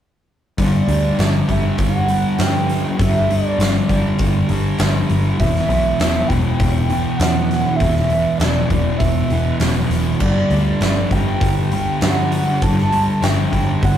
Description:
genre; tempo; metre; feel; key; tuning
rock, shoegaze and dream pop; 100 BPM; 4/4; straight; G major; A4 = 440 Hz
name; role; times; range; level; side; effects
pure sine lead; melody; 0.6-14.0 s; D5 to A5; -23 LUFS; right 2 dB; chorus
thick fuzz guitar; riff; 0.6-14.0 s; E2 to G3; -19 LUFS; equal; distortion
vintage muted picked electric bass; bass; 0.6-14.0 s; E1 to G2; -20 LUFS; equal; none
huge arena drum kit; drums; 0.6-14.0 s; crash cymbal, hi-hat, kick drum, snare drum; -21 LUFS; left 1 dB; none
room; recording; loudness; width
moderate small room reverb, RT60 0.5 s; rough rehearsal-room recording; -15 LUFS; side -10 dB against mid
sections
0.6-14.0 A section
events
none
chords
0.6 G5; 5.4 E5; 10.2 G5

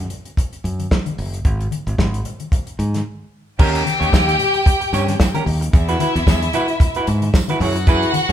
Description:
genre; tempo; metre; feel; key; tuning
disco; 112 BPM; 4/4; swing 56% on 16ths; unclear; A4 = 440 Hz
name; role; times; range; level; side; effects
modern bright fingered electric bass; bass; 0.0-8.3 s; F#1 to G#2; -21 LUFS; equal; none
damped 70s drum kit; drums; 0.1-8.3 s; crash cymbal, hi-hat, kick drum, snare drum; -17 LUFS; equal; none
congas; percussion; 0.1-8.3 s; none; -29 LUFS; left 5 dB; none
rich studio violin section; second line; 3.6-8.3 s; E4 to G5; -21 LUFS; left 1 dB; none
semi-hollow electric guitar; accompaniment; 3.6-8.3 s; C#4 to C#5; -22 LUFS; right 2 dB; none
tambourine; percussion; 3.6-8.3 s; none; -38 LUFS; right 5 dB; none
room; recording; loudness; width
moderate large studio reverb, RT60 1.1 s; band playing live in one room; -16 LUFS; side -10 dB against mid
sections
0.0-3.6 A section; 3.6-8.3 B section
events
break 3.1-3.6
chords
0.0 N.C.; 3.6 D#7; 5.7 Esus2; 7.6 F#9sus4

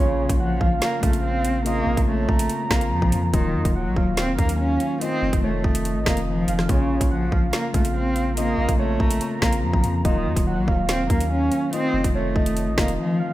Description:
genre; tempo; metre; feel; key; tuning
hip hop, drill; 143 BPM; 4/4; half-time; Bb harmonic minor; A4 = 440 Hz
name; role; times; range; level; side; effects
dark cello; melody; 0.0-13.3 s; Db3 to Db4; -25 LUFS; equal; none
soft octave-layered synth lead; second line; 0.0-13.3 s; Db5 to Bb5; -29 LUFS; right 2 dB; chorus, digital delay
mellow tine electric piano; accompaniment; 0.0-13.3 s; Db3 to F4; -28 LUFS; left 4 dB; none
long sustained 808-style bass; bass; 0.0-13.0 s; Eb1 to Gb2; -25 LUFS; equal; none
drill drum kit; drums; 0.3-13.0 s; hi-hat, kick drum, rim click, snare drum; -22 LUFS; equal; none
room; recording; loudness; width
light reverb; none; -19 LUFS; side -15 dB against mid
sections
0.0-13.3 A section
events
drums muted 13.0-13.3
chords
0.0 Bbmadd9; 3.3 Ebmadd9; 5.0 F7; 6.7 Bbmadd9; 10.0 Ebmadd9; 11.7 F7

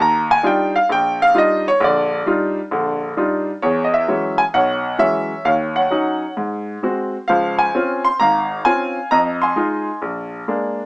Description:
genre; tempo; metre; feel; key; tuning
solo jazz; 132 BPM; 4/4; swing 68% on 8ths; unclear; A4 = 441 Hz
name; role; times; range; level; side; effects
clear grand piano; solo; 0.0-10.8 s; Ab1 to C6; -15 LUFS; equal; none
room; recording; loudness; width
moderate studio reverb, RT60 0.6 s; small speaker sound; -15 LUFS; side -23 dB against mid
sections
0.0-3.6 A section; 3.6-10.9 B section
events
grand piano solo 0.0-3.6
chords
0.0 Ebmaj9; 3.6 E69; 5.5 Ebm7; 6.4 Ab7; 7.3 Dbmaj7; 9.1 Fm7; 10.0 Bb7

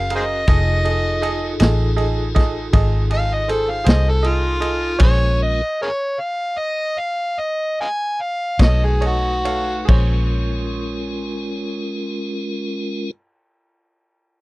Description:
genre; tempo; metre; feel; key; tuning
slow blues; 45-53 BPM (dotted quarters); 12/8; straight; Bb minor; A4 = 440 Hz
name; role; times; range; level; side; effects
overdriven harmonica; melody; 0.0-9.9 s; F4 to Ab5; -21 LUFS; equal; none
bright upright piano; accompaniment; 0.0-13.1 s; Ab4 to F5; -27 LUFS; right 5 dB; none
tonewheel organ; sustained chords; 0.0-13.1 s; Ab3 to F5; -27 LUFS; equal; slow rotary speaker
vintage muted fingered electric bass; bass; 0.0-13.1 s; F1 to C2; -19 LUFS; equal; none
vintage drum kit; drums; 0.1-10.1 s; crash cymbal, kick drum, ride cymbal, snare drum; -16 LUFS; equal; none
room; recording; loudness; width
little or no reverb; dry, close 1970s-style studio recording; -17 LUFS; side -20 dB against mid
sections
0.0-9.9 A section; 9.9-14.4 B section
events
harmonica solo 0.0-9.9; slowing down 3.5-9.9; stop 5.0-8.6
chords
0.5 F7#9; 5.0 Bbm7; 8.6 B7; 9.9 Bbm7

